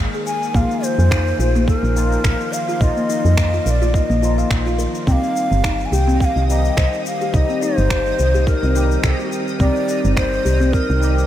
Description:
organic downtempo; 106 BPM; 4/4; swing 55% on 16ths; C minor; A4 = 440 Hz
bright tine electric piano; accompaniment; 0.0-11.3 s; Eb3 to Ab4; -26 LUFS; left 1 dB; analog chorus, sidechain pumping, tape echo
woody FM bass; bass; 0.0-11.2 s; G1 to F2; -18 LUFS; equal; sidechain pumping
kalimba; arpeggios; 0.1-11.2 s; Bb3 to F5; -23 LUFS; left 2 dB; tape echo
electronic shaker and finger snaps; drums; 0.1-11.3 s; -28 LUFS; equal; overdrive
breathy low ney; melody; 0.3-11.3 s; Bb4 to Ab5; -22 LUFS; equal; tape echo
electronic kick drum; drums; 0.5-10.9 s; -19 LUFS; equal; overdrive
twinkling granular texture; texture; 5.5-11.3 s; Eb4; -32 LUFS; right 1 dB; built-in reverb, analog chorus
moderate huge ambient reverb, RT60 7.6 s; dreamy mix soaked in reverb; -15 LUFS; side -12 dB against mid
0.0-11.3 A section
0.0 Absus2; 0.5 Bbsus4; 5.1 Cm

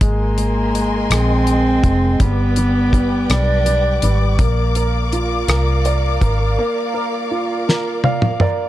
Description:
six-eight pop ballad; 55 BPM (dotted quarters); 6/8; straight; A4 = 440 Hz
warm cello; melody; 0.0-4.1 s; Bb3 to D4; -19 LUFS; right 1 dB; ping-pong delay
warm grand piano; accompaniment; 0.0-8.7 s; G3 to F5; -22 LUFS; right 1 dB
warm studio string section; sustained chords; 0.0-8.7 s; Bb4 to D6; -25 LUFS; equal
vintage muted fingered electric bass; bass; 0.0-6.6 s; F1 to C2; -18 LUFS; equal
damped 70s drum kit; drums; 0.0-8.6 s; hi-hat, kick drum, rim click, snare drum, toms; -18 LUFS; equal
small room ambience; dark, warm production; -14 LUFS; side -14 dB against mid
0.0-8.7 A section
grand piano fill 7.7-8.7; drum fill 7.7-8.7
0.0 Abadd9; 2.2 G; 4.4 Bb

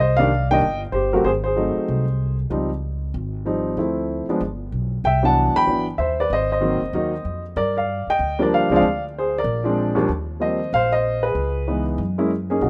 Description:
jazz piano trio; 190 BPM; 4/4; swing 62% on 8ths; C minor; A4 = 438 Hz
warm upright piano; melody; 0.0-12.7 s; Eb2 to B5; -22 LUFS; equal
upright bass; bass; 0.0-12.7 s; Gb1 to G2; -28 LUFS; equal
light reverb, small room ambience; rough home demo mix; -21 LUFS; mono
0.0-10.1 A section; 10.1-12.7 B section
0.0 Cm9; 1.2 Ab7b9; 2.5 Dbmaj9#11; 3.8 Dm9; 4.4 G; 5.0 Cmaj9#11; 6.3 Ab9; 7.6 Gm7; 8.8 Dm7b5; 9.5 Bb7; 10.1 Eb5; 11.4 Dbm7; 12.0 Gb

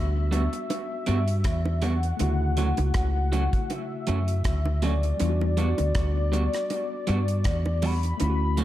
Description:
lovers rock reggae; 80 BPM; 4/4; swing 56% on 16ths; E dorian; A4 = 440 Hz
warm velvety synth lead; melody; 0.0-8.6 s; D5 to B5; -32 LUFS; left 3 dB; chorus, tape echo
mellow tine electric piano; accompaniment; 0.0-8.6 s; C#3 to F#4; -33 LUFS; left 2 dB; overdrive, fast stereo tremolo, dub echo
deep dub fingered electric bass; bass; 0.0-8.6 s; C#2 to G2; -24 LUFS; equal
electric guitar through a small old amp; stabs; 0.3-8.6 s; F#3 to F#4; -32 LUFS; right 4 dB; dub echo
deep reggae drum kit; drums; 0.3-8.6 s; hi-hat, kick drum, rim click; -30 LUFS; equal
bongos; percussion; 0.3-8.4 s; -36 LUFS; right 4 dB
light reverb, studio ambience; dark, warm production; -23 LUFS; side -14 dB against mid
0.0-8.6 A section
0.0 Em9; 2.2 Dmaj7; 5.2 Em9

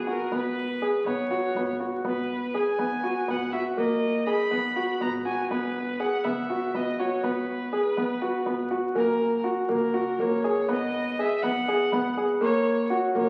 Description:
contemporary instrumental, chamber music in an uneven meter; 243 BPM (eighths); 7/8; straight; G# minor; A4 = 439 Hz
clear violin; melody; 0.0-13.3 s; G#4 to B5; -34 LUFS; equal
felt-muted upright piano; arpeggios; 0.0-13.3 s; A#3 to G#4; -27 LUFS; equal
upright bass; bass; 0.0-13.3 s; F#1 to D#2; -48 LUFS; equal
celesta; texture; 9.0-13.3 s; F#5 to B5; -38 LUFS; equal
wet recital hall reverb, RT60 1.7 s; very old 78 rpm record, vinyl crackle; -26 LUFS; mono
0.0-9.0 A section; 9.0-13.3 B section
0.3 G#madd11; 2.0 G#m9; 5.5 F#9sus4; 7.2 G#m7; 9.0 F#; 10.7 G#m7; 12.4 F#

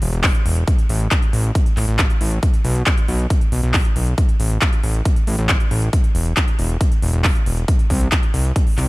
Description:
uplifting trance; 137 BPM; 4/4; straight; A4 = 440 Hz
fat analog bass; bass; 0.0-8.9 s; E1 to C2; -18 LUFS; equal; sidechain pumping
big-room dance drum kit; drums; 0.0-8.9 s; handclaps, hi-hat; -24 LUFS; equal
electronic kick drum; drums; 0.2-8.6 s; -17 LUFS; equal
little or no reverb; -15 LUFS; side -21 dB against mid
0.0-8.9 A section

